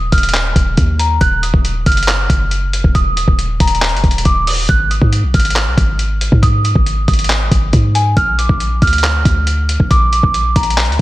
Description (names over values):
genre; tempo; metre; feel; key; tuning
hip hop, trap; 138 BPM; 4/4; half-time; Eb harmonic minor; A4 = 440 Hz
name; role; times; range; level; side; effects
large celesta; melody; 0.0-11.0 s; Ab5 to Gb6; -18 LUFS; equal; digital delay
warm 808-style bass; bass; 0.0-11.0 s; Eb1 to Ab2; -16 LUFS; equal; none
lo-fi sampler-style drum kit; drums; 0.1-11.0 s; handclaps, hi-hat, kick drum; -14 LUFS; equal; vintage 12-bit sampler grit
room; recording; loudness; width
little or no reverb; none; -11 LUFS; side -17 dB against mid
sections
0.0-11.0 A section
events
none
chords
0.0 Ebmadd9; 4.7 Ab5; 8.2 Bb